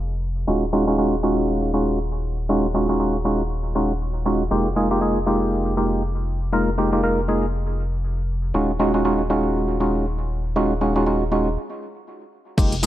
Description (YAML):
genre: deep house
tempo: 119 BPM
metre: 4/4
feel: swing 58% on 16ths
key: unclear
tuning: A4 = 440 Hz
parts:
  - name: rubbery square bass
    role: bass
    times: 0.0-12.9 s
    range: Eb1 to F1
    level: -25 LUFS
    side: equal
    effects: sidechain pumping
  - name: percussive organ stab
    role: stabs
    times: 0.5-12.9 s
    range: Ab3 to Bb4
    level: -20 LUFS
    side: right 1 dB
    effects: chorus, sidechain pumping, tape echo
  - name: deep house drum kit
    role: drums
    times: 12.6-12.9 s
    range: crash cymbal, hi-hat, shaker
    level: -25 LUFS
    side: left 2 dB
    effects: overdrive
  - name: electronic kick drum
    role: drums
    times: 12.6-12.7 s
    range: none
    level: -19 LUFS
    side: equal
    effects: overdrive
room: light reverb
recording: dark, warm production, low-pass filter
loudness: -19 LUFS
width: side -13 dB against mid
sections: 0.0-12.6 A section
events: filter sweep 0.0-12.6; break 11.6-12.6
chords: 0.5 Ebm11; 4.5 Fm11; 8.5 Ebm11